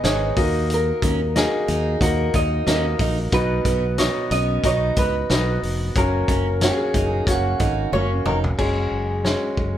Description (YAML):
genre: piano-driven pop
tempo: 91 BPM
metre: 4/4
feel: swing 56% on 16ths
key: F# major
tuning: A4 = 439 Hz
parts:
  - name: electric guitar at the edge of break-up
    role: melody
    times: 0.0-9.8 s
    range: F#4 to D#5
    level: -25 LUFS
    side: equal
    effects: tape echo
  - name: clear concert grand piano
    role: accompaniment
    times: 0.0-9.8 s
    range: G#2 to F#5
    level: -24 LUFS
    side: equal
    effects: none
  - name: fingered electric bass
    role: bass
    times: 0.0-9.8 s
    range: E#1 to D#2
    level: -24 LUFS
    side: equal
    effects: none
  - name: loose indie drum kit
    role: drums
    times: 0.0-9.7 s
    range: crash cymbal, hi-hat, kick drum, snare drum, toms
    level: -24 LUFS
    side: equal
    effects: none
  - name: picked steel-string acoustic guitar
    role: riff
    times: 1.0-8.4 s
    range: B3 to D#4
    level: -30 LUFS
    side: right 6 dB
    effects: none
room: light reverb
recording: band playing live in one room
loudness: -18 LUFS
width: side -11 dB against mid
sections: 0.0-8.6 A section; 8.6-9.8 B section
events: drum fill 7.9-8.6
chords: 0.4 D#m; 3.3 B; 6.0 F#